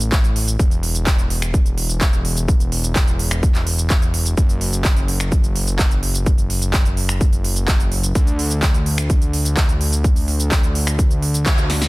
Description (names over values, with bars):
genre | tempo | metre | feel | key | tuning
EDM, festival progressive house | 127 BPM | 4/4 | straight | unclear | A4 = 439 Hz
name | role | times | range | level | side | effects
fat analog bass | bass | 0.0-11.9 s | E1 to D2 | -20 LUFS | equal | sidechain pumping
big-room dance drum kit | drums | 0.0-11.9 s | cabasa, finger snaps, handclaps, hi-hat, snare drum | -23 LUFS | right 1 dB | none
electronic kick drum | drums | 0.1-11.6 s | none | -16 LUFS | equal | none
room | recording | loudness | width
little or no reverb | dense, heavily limited modern master | -15 LUFS | side -21 dB against mid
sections
0.0-11.9 A section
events
band accent 11.5; drum fill 11.7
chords
none